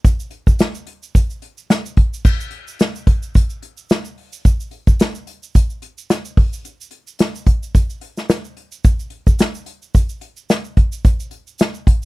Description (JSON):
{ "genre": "indie pop", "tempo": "109 BPM", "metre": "4/4", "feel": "swing 55% on 16ths", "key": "none", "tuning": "none", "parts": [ { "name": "unplugged drum kit", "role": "drums", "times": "0.0-12.0 s", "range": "crash cymbal, hi-hat, kick drum, snare drum", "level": "-14 LUFS", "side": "equal", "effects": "none" }, { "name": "tube shaker", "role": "percussion", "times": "0.1-12.1 s", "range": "none", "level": "-37 LUFS", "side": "right 8 dB", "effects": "none" } ], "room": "little or no reverb", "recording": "dry, close 1970s-style studio recording", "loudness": "-16 LUFS", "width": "side -22 dB against mid", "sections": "0.0-2.2 A section; 2.2-12.1 A section", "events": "none", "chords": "none", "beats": "| 0.05 0.60 1.15 1.70 | 2.25 2.80 3.35 3.90 | 4.45 5.00 5.55 6.10 | 6.65 7.20 7.75 8.30 | 8.85 9.40 9.95 10.50 | 11.05 11.60" }